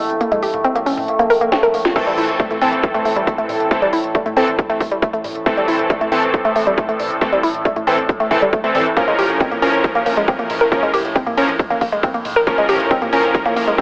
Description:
driving peak-time techno; 137 BPM; 4/4; straight; A4 = 440 Hz
saturated sub bass; bass; 0.0-13.8 s; A1 to Bb1; -41 LUFS; equal; sidechain pumping, low-pass filter
overtone-sweeping drone; drone; 0.0-13.8 s; A2 to A3; -23 LUFS; equal; chorus, built-in reverb, phaser, sidechain pumping
techno drum kit; drums; 0.1-13.8 s; crash cymbal, hi-hat, ride cymbal, snare drum, toms; -29 LUFS; equal; overdrive, sidechain pumping on hats, sidechain pumping on toms, sidechain pumping on cymbals
woody wave-folded pluck; riff; 0.2-13.8 s; G3 to Bb4; -18 LUFS; equal; chorus, sidechain pumping, digital delay
supersaw stab; stabs; 2.0-13.8 s; E3 to Bb4; -18 LUFS; equal; cassette tape, sidechain pumping, digital delay
electronic kick drum; drums; 2.0-13.8 s; -18 LUFS; equal; overdrive
moderate huge ambient reverb, RT60 6.9 s; telephone sound; -14 LUFS; side -28 dB against mid
0.0-2.0 A section; 2.0-13.8 B section
kick drops out 0.2-2.0; drum fill 1.5-2.0; drop 2.0-13.8
0.0 N.C.; 2.0 Am; 9.0 Bbm

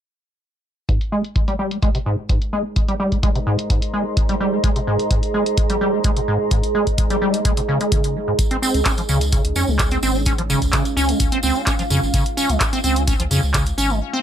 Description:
acid house; 128 BPM; 4/4; straight; Ab major; A4 = 441 Hz
acid bass, square; riff; 0.9-14.2 s; Ab2 to Db4; -21 LUFS; equal; lush chorus, sidechain pumping, ping-pong delay
electronic kick drum; drums; 0.9-13.6 s; -20 LUFS; equal
punchy analog drum machine; drums; 0.9-13.8 s; handclaps, hi-hat; -24 LUFS; equal; low-pass filter on hats, low-pass filter on snare
deep dark ambient pad; texture; 2.7-14.0 s; Db4 to C6; -25 LUFS; right 3 dB; chorus, built-in reverb, sidechain pumping
tambourine; percussion; 8.4-14.0 s; -28 LUFS; right 3 dB
saturated sub bass; bass; 8.7-14.0 s; Ab1 to F2; -22 LUFS; equal; sidechain pumping
light reverb; -17 LUFS; side -10 dB against mid
0.9-14.2 A section
filter sweep on drum 0.9-14.2; filter sweep on acid bass 0.9-14.2; break 14.0
0.9 Abmaj9; 8.4 Dbmaj9

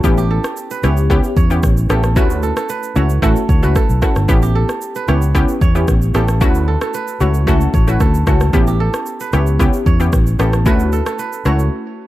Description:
afrobeats; 113 BPM; 4/4; straight; D major; A4 = 444 Hz
analog pluck; accompaniment; 0.0-11.7 s; A3 to G4; -19 LUFS; left 1 dB; chorus
kora; riff; 0.0-12.1 s; G4 to C#5; -24 LUFS; right 5 dB; tape echo
fingered electric bass; bass; 0.0-11.7 s; G1 to E2; -15 LUFS; equal
afro-pop drum kit; drums; 0.0-11.7 s; kick drum, rim click, shaker; -17 LUFS; equal
little or no reverb; dark, warm production; -12 LUFS; side -15 dB against mid
0.0-12.1 A section
break 11.7-12.1
0.0 A7; 2.2 Dmaj7; 4.3 A7; 6.4 Dmaj7; 8.5 A7; 10.7 Dmaj7

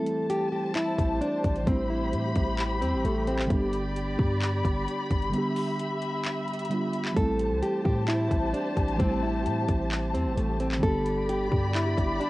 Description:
hip hop, trap; 131 BPM; 4/4; half-time; A minor; A4 = 440 Hz
nylon-string guitar; melody; 0.0-3.5, 7.2-12.3 s; A3 to A4; -30 LUFS; equal; cassette tape
muted felt-like synth keys; accompaniment; 0.0-12.3 s; D3 to G4; -31 LUFS; right 2 dB; chorus, cassette tape, plate reverb
dark chamber string section; sustained chords; 0.0-12.3 s; G4 to B5; -32 LUFS; left 2 dB; cassette tape
trap drum kit; drums; 0.1-12.3 s; handclaps, hi-hat, kick drum; -30 LUFS; equal; cassette tape
warm 808-style bass; bass; 1.0-12.2 s; G1 to A2; -30 LUFS; equal
light reverb; home recording on cassette; -25 LUFS; side -18 dB against mid
0.0-12.3 A section
break 0.0-0.8; kick muted 5.3-7.2
0.0 Am7; 3.5 G; 7.2 Am7; 10.8 G

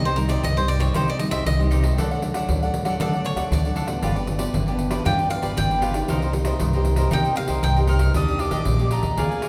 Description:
samba and choro; 117 BPM; 4/4; straight; C minor; A4 = 440 Hz
cavaquinho; melody; 0.0-7.8 s; Bb4 to G5; -29 LUFS; equal
cavaquinho; accompaniment; 0.0-9.5 s; D4 to F#5; -32 LUFS; equal
nylon-string guitar; accompaniment; 0.0-9.5 s; G2 to Ab4; -30 LUFS; equal
upright bass; bass; 0.0-9.4 s; G1 to D3; -25 LUFS; equal
pandeiro; percussion; 0.1-9.5 s; -29 LUFS; equal
alto recorder; second line; 7.9-9.5 s; Ab5 to F6; -31 LUFS; equal
wet recital hall reverb, RT60 1.7 s; recorded in a church or concert hall; -22 LUFS; mono
0.0-8.1 A section; 8.1-9.5 B section
cavaquinho solo 0.0-8.1; recorder solo 8.1-9.5
0.0 Cm; 2.0 D; 4.0 G7; 6.1 Cm7; 8.1 Ebmaj7

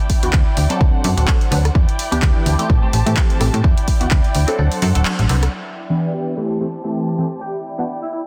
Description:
filtered disco house; 127 BPM; 4/4; swing 56% on 16ths; E minor; A4 = 439 Hz
rich studio violin section; sustained chords; 0.0-8.3 s; D4 to A5; -30 LUFS; equal; sidechain pumping, low-pass filter
electronic kick drum; drums; 0.1-4.2 s; -18 LUFS; equal
punchy analog drum machine; drums; 0.1-5.5 s; handclaps, hi-hat, rim click; -28 LUFS; equal; overdrive, sidechain pumping on hats
tambourine; percussion; 0.1-8.2 s; -42 LUFS; equal
funky polysynth comp; accompaniment; 0.2-7.8 s; E3 to B4; -25 LUFS; equal; chorus, phaser, sidechain pumping, low-pass filter
slap-like FM bass; bass; 0.2-5.5 s; D1 to A2; -19 LUFS; equal; sidechain pumping, low-pass filter
clear horn section; melody; 6.1-8.2 s; E4 to G4; -32 LUFS; equal; sidechain pumping, low-pass filter
light reverb, studio reverb; dense, heavily limited modern master; -17 LUFS; mono
0.0-5.5 A section; 5.5-8.3 B section
kick drops out 4.6-5.5; band accent 5.1; filter sweep 5.5-8.3
0.0 Em7; 0.8 D7; 1.8 Em7; 2.7 Am7; 3.6 Em7; 4.6 D7; 5.5 Em7; 6.5 Am7; 7.4 Em7

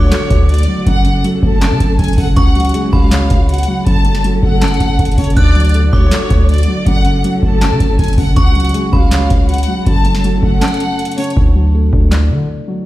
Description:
hip hop, trap; 160 BPM; 4/4; half-time; F# minor; A4 = 443 Hz
clear chamber violin section; melody; 0.0-11.3 s; C#5 to A5; -21 LUFS; left 1 dB; tape echo
metallic FM bell; second line; 0.0-11.3 s; A5 to F#6; -26 LUFS; left 1 dB; chorus, tape echo
felt-muted upright piano; accompaniment; 0.0-12.9 s; F#2 to D5; -18 LUFS; left 1 dB
warm studio string section; sustained chords; 0.0-11.4 s; C#3 to A4; -23 LUFS; right 2 dB; stereo widening
hard-hitting 808-style bass; bass; 0.0-12.5 s; F#1 to D3; -14 LUFS; equal
booming analog drum machine; drums; 0.1-12.2 s; handclaps, hi-hat, kick drum, snare drum; -14 LUFS; equal
studio reverb; played on a big sound system in a bare room, stone room reverb; -10 LUFS; side -16 dB against mid
0.0-11.4 A section; 11.4-12.9 B section
break 10.6-11.4; hi-hats muted 11.4-12.9
0.0 D; 0.9 F#m; 2.4 C#sus4; 3.9 F#m; 5.4 D; 6.9 F#m; 8.4 C#sus4; 9.9 F#m; 11.4 D

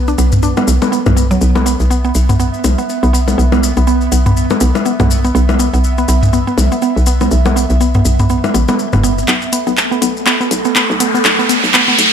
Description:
minimal techno; 122 BPM; 4/4; swing 58% on 16ths; A4 = 442 Hz
hollow knocking FM bass; bass; 0.0-12.1 s; F#1 to B1; -14 LUFS; equal; high-pass filter
pulsing gated texture; texture; 0.0-12.1 s; A3 to E5; -21 LUFS; right 3 dB; chorus, built-in reverb
mallet-like synth pluck; riff; 0.1-11.9 s; F#3 to D4; -17 LUFS; right 1 dB; chorus, digital delay
maracas; percussion; 0.1-12.1 s; -24 LUFS; left 6 dB
electronic toms and bongos; percussion; 0.3-9.0 s; -16 LUFS; left 2 dB; ping-pong delay
garage drum kit; drums; 9.3-12.1 s; handclaps, hi-hat; -14 LUFS; equal; low-pass filter on snare, low-pass filter on hats
riser; sound effects; 10.5-12.1 s; -14 LUFS; right 1 dB
light reverb; -10 LUFS; side -8 dB against mid
0.0-9.3 A section; 9.3-12.1 B section
build-up 9.3-12.1; drum fill 9.3-12.1; riser 10.5-12.1
0.0 N.C.; 9.3 B5

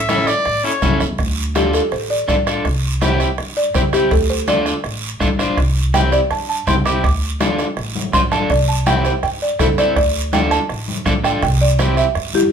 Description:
latin, cumbia; 164 BPM; 4/4; straight; D minor; A4 = 440 Hz
clear trumpet; second line; 0.0-1.0 s; C#5 to E5; -18 LUFS; left 2 dB
upright bass; bass; 0.0-12.4 s; A1 to G2; -21 LUFS; equal
electric guitar at the edge of break-up; accompaniment; 0.1-12.1 s; C4 to C5; -21 LUFS; equal
bombo; percussion; 0.1-12.3 s; -23 LUFS; right 1 dB
congas; percussion; 0.1-12.5 s; -23 LUFS; left 3 dB
guiro; percussion; 0.1-12.5 s; -28 LUFS; right 6 dB
buzzing marimba with medium mallets; melody; 1.6-12.5 s; E4 to D6; -18 LUFS; right 1 dB
wet studio reverb, RT60 0.6 s; band playing live in one room; -15 LUFS; side -7 dB against mid
0.0-1.2 A section; 1.2-12.5 B section
trumpet solo 0.0-1.2; marimba solo 1.2-12.5
0.0 A7; 1.2 Dm; 2.7 C; 4.1 Dm; 5.6 C; 7.0 Dm; 8.5 C; 10.0 Dm; 11.4 C

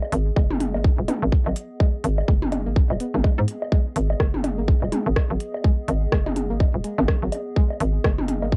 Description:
minimal techno; 125 BPM; 4/4; swing 59% on 16ths; G# minor; A4 = 441 Hz
electronic woodblock and toms; percussion; 0.0-8.5 s; -30 LUFS; equal; cassette tape, analog delay
warbly tape-like pad; texture; 0.0-8.6 s; B3 to D#5; -38 LUFS; equal; chorus, built-in reverb, sidechain pumping, cassette tape
hollow knocking FM bass; bass; 0.1-8.6 s; D#1 to G#2; -26 LUFS; equal; sidechain pumping
minimal click drum kit; drums; 0.1-8.4 s; hi-hat, rim click; -30 LUFS; equal; overdrive, cassette tape
string-like resonator pluck; riff; 0.4-8.5 s; F#3 to B3; -34 LUFS; equal; chorus, sidechain pumping, cassette tape, analog delay
electronic kick drum; drums; 0.4-8.6 s; -21 LUFS; equal; overdrive, cassette tape
little or no reverb; home recording on cassette; -22 LUFS; mono
0.0-8.6 A section
0.0 G#m

